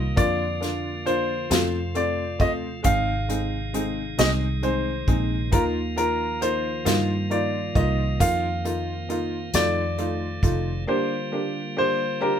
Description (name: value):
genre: six-eight pop ballad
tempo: 45 BPM (dotted quarters)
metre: 6/8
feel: straight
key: Bb major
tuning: A4 = 441 Hz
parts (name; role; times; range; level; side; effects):
- clear baby grand piano; melody; 0.0-12.4 s; Bb4 to F5; -26 LUFS; left 1 dB; none
- tonewheel organ; sustained chords; 0.0-12.4 s; C3 to F4; -32 LUFS; right 1 dB; stopped rotary speaker
- vintage muted fingered electric bass; bass; 0.0-10.8 s; F1 to G2; -28 LUFS; right 1 dB; none
- felt-muted upright piano; accompaniment; 0.2-12.4 s; Ab3 to G4; -28 LUFS; equal; none
- unplugged drum kit; drums; 0.2-10.6 s; hi-hat, kick drum, snare drum; -24 LUFS; equal; none
room: light reverb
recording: band playing live in one room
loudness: -22 LUFS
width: side -8 dB against mid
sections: 0.0-12.4 A section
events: none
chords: 0.2 Bb/F; 1.5 F; 2.9 Ab; 5.5 Ebsus2; 8.2 F7sus4; 9.5 F7; 10.9 Bb6